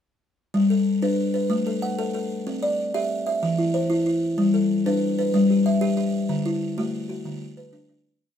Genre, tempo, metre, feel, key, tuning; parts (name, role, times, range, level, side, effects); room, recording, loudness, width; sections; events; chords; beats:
southern african traditional, mbira-style interlocking cycle; 125 BPM (dotted quarters); 12/8; straight; G major; A4 = 444 Hz
buzzing kalimba; solo; 0.5-8.4 s; D3 to F#5; -21 LUFS; left 1 dB
light reverb; band playing live in one room; -21 LUFS; side -9 dB against mid
0.5-8.2 A section
fade-out 6.3-8.2
0.5 G; 1.5 F#madd11/A; 2.5 C; 3.4 C/E; 4.4 G; 6.3 D
| 0.54 1.02 1.51 1.99 | 2.47 2.95 3.42 3.90 | 4.38 4.86 5.34 5.82 | 6.29 6.77 7.25 7.73